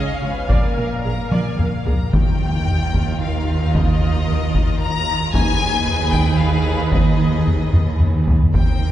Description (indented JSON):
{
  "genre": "cinematic, epic orchestral film score",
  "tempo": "112 BPM",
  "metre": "3/4",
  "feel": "straight",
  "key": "Eb major",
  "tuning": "A4 = 443 Hz",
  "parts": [
    { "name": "warm symphonic violin section", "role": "melody", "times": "0.0-8.9 s", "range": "Eb5 to A#5", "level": "-26 LUFS", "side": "left 5 dB", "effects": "none" },
    { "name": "rich studio violin section", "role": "second line", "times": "0.0-8.9 s", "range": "F4 to D#5", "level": "-29 LUFS", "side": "left 1 dB", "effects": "none" },
    { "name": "dark symphonic viola section", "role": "accompaniment", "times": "0.0-8.9 s", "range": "C4 to E#5", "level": "-31 LUFS", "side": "right 1 dB", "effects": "none" },
    { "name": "dark French horn section", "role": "sustained chords", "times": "0.0-8.7 s", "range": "Bb3 to F4", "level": "-35 LUFS", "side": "left 2 dB", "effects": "none" },
    { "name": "dark tuba", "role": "bass", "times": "0.0-8.9 s", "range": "A#1 to Eb2", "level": "-26 LUFS", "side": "right 3 dB", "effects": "none" },
    { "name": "warm symphonic cello section", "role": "bass", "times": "0.0-8.9 s", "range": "Eb2 to C#3", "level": "-26 LUFS", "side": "right 2 dB", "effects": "none" },
    { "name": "warm symphonic double bass section", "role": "bass", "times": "0.0-8.9 s", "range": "A#1 to Eb2", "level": "-22 LUFS", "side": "right 2 dB", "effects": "none" },
    { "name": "taiko ensemble", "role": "drums", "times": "0.5-8.9 s", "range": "none", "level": "-19 LUFS", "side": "equal", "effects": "none" },
    { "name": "timpani", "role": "percussion", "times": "2.1-6.1 s", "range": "Eb3", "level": "-28 LUFS", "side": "left 1 dB", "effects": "none" }
  ],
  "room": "wet cathedral reverb, RT60 3.9 s",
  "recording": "recorded in a church or concert hall, nothing above 10.4 kHz",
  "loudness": "-16 LUFS",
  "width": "side -12 dB against mid",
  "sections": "0.0-2.1 A section; 2.1-8.9 B section",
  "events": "drum fill 1.3-2.1, 7.7-8.6",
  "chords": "0.5 A#7; 2.1 Ebsus2; 5.3 Abm/Eb",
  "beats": "| 0.49 1.04 1.58 | 2.13 2.67 3.20 | 3.74 4.27 4.80 | 5.33 5.86 6.39 | 6.93 7.47 8.01 | 8.55"
}